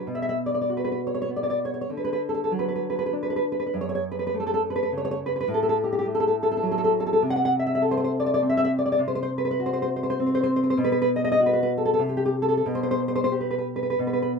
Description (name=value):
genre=romantic piece for solo classical guitar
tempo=88-106 BPM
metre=3/4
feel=rubato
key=B minor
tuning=A4 = 441 Hz
part: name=nylon-string guitar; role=solo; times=0.0-14.4 s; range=F#2 to F#5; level=-22 LUFS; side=equal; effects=none
room=moderate studio reverb, RT60 0.6 s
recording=minimal, uncompressed stereo recording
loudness=-22 LUFS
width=side -5 dB against mid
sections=0.1-14.4 A section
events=none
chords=0.1 B5; 1.9 D6; 3.7 F#m; 5.5 F#m/A; 7.2 Am/C; 9.0 B5; 12.0 N.C.; 12.7 Gadd11/B